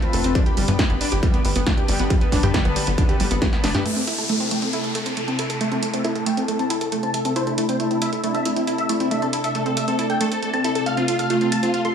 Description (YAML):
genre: uplifting trance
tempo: 137 BPM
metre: 4/4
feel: straight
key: A minor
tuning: A4 = 440 Hz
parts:
  - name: analog string pad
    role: sustained chords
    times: 0.0-11.9 s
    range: C3 to B4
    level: -26 LUFS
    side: equal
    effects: ensemble chorus, sidechain pumping
  - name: wide unison pluck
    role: arpeggios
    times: 0.0-11.9 s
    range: G3 to A4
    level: -25 LUFS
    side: right 1 dB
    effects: sidechain pumping, dub echo
  - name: punchy analog drum machine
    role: drums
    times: 0.0-11.9 s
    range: hi-hat, snare drum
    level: -28 LUFS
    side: right 1 dB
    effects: none
  - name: tight sequencer bass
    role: bass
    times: 0.1-3.8 s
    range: F1 to G2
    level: -22 LUFS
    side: left 1 dB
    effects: sidechain pumping
  - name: electronic kick drum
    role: drums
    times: 0.4-3.5 s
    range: none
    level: -20 LUFS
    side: equal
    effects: distortion
  - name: big supersaw lead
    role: melody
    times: 3.9-11.9 s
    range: E4 to C6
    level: -24 LUFS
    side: left 1 dB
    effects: sidechain pumping, low-pass filter, dub echo
  - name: downlifter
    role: sound effects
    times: 3.9-7.4 s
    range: none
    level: -29 LUFS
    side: left 1 dB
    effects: none
room: light reverb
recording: studio ambience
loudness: -19 LUFS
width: side -7 dB against mid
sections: 0.0-3.9 A section; 3.9-11.9 B section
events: drum fill 3.5-3.9; band accent 3.7; filter sweep on supersaw synth 3.9-11.9; filter sweep on synth arpeggio sound 3.9-11.9; filter sweep on analog synth pad 3.9-11.9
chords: 0.4 G; 3.9 Am; 10.9 F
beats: | 0.35 0.79 1.23 1.67 | 2.10 2.54 2.98 3.42 | 3.86 4.29 4.73 5.17 | 5.61 6.05 6.48 6.92 | 7.36 7.80 8.23 8.67 | 9.11 9.55 9.99 10.43 | 10.86 11.30 11.74